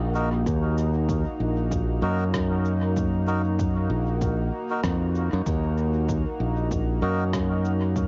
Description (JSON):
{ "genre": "ambient dub", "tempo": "96 BPM", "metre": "4/4", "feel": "swing 58% on 16ths", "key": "Eb minor", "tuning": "A4 = 440 Hz", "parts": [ { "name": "warm analog pad", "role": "sustained chords", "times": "0.0-8.1 s", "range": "Bb3 to Eb5", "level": "-33 LUFS", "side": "equal", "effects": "chorus, cassette tape" }, { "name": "modern bright fingered electric bass", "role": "bass", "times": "0.0-8.1 s", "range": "Bb1 to Gb2", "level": "-26 LUFS", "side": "equal", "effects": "none" }, { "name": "drifting glass-harmonics texture", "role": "texture", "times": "0.0-8.1 s", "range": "Eb4", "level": "-42 LUFS", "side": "equal", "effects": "chorus, built-in reverb, cassette tape" }, { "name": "melodica", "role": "stabs", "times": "0.1-7.2 s", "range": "Eb4 to Bb4", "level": "-35 LUFS", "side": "equal", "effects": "cassette tape, dub echo" }, { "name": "electronic cabasa and rim click", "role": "drums", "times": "0.2-8.1 s", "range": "none", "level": "-42 LUFS", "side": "equal", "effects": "small room ambience, cassette tape, dub echo" }, { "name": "electronic kick drum", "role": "drums", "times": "0.5-8.1 s", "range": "none", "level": "-33 LUFS", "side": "equal", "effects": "overdrive, small room ambience, cassette tape" } ], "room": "light reverb", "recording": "home recording on cassette, nothing above 7.7 kHz", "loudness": "-25 LUFS", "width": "mono", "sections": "0.0-8.1 A section", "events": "none", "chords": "0.0 Ebm", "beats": "| 0.46 1.09 1.71 2.34 | 2.96 3.59 4.21 4.84 | 5.46 6.09 6.71 7.34 | 7.96" }